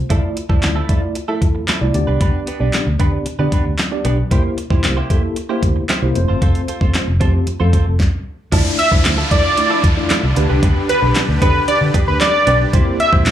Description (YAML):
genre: dance-pop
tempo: 114 BPM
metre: 4/4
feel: straight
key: D dorian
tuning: A4 = 441 Hz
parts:
  - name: mellow tine electric piano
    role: accompaniment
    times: 0.1-13.3 s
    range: A3 to D5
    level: -22 LUFS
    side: equal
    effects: medium stereo tremolo, sidechain pumping, plate reverb, slapback echo
  - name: direct-recorded clean electric guitar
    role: riff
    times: 0.1-13.3 s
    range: F3 to C5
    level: -26 LUFS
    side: right 5 dB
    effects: analog chorus, slapback echo
  - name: vintage muted fingered electric bass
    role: bass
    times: 0.1-13.3 s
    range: F1 to D3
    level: -18 LUFS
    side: equal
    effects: sidechain pumping
  - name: smooth R&B drum kit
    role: drums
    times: 0.1-13.3 s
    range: crash cymbal, handclaps, hi-hat, kick drum, snare drum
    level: -16 LUFS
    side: equal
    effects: none
  - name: supersaw pad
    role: sustained chords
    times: 8.5-13.3 s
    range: C3 to B4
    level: -26 LUFS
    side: equal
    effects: sidechain pumping, plate reverb
  - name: downlifter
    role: sound effects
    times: 8.5-12.7 s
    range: none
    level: -25 LUFS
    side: equal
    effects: none
  - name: octave-doubled lead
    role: melody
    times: 8.8-13.1 s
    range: B4 to E5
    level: -16 LUFS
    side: right 1 dB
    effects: chorus, sidechain pumping, plate reverb, slapback echo, ping-pong delay
room: light reverb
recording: live gig heard through the venue's PA, club reverb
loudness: -13 LUFS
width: side -11 dB against mid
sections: 0.0-8.5 A section; 8.5-13.3 B section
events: stop 8.0-8.5; drop 8.5-13.3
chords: 0.1 Dmadd9; 1.9 G; 4.3 C7; 6.2 F; 8.5 Dmadd9; 10.4 G; 12.7 C7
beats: | 0.10 0.63 1.16 1.68 | 2.21 2.73 3.26 3.79 | 4.31 4.84 5.37 5.89 | 6.42 6.94 7.47 8.00 | 8.52 9.05 9.58 10.10 | 10.63 11.15 11.68 12.21 | 12.73 13.26